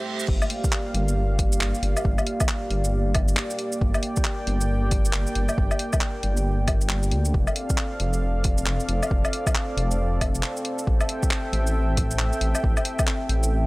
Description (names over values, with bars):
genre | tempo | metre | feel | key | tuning
future garage | 136 BPM | 4/4 | swing 62% on 16ths | G dorian | A4 = 439 Hz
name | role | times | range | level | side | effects
dark analog pad | sustained chords | 0.0-13.7 s | A3 to G5 | -29 LUFS | equal | chorus, vintage 12-bit sampler grit, sidechain pumping
deep house drum kit | drums | 0.2-13.5 s | crash cymbal, handclaps, hi-hat, shaker, woodblock | -28 LUFS | left 1 dB | overdrive
dark detuned saw bass | bass | 0.3-13.7 s | F1 to D2 | -24 LUFS | equal | tube saturation, sidechain pumping
electronic kick drum | drums | 0.3-13.1 s | none | -24 LUFS | equal | overdrive
room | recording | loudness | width
little or no reverb | dry, gritty hardware recording | -21 LUFS | side -22 dB against mid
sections
0.0-13.7 A section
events
break 0.0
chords
0.3 Gm7; 7.3 Dm7/F; 10.9 Am7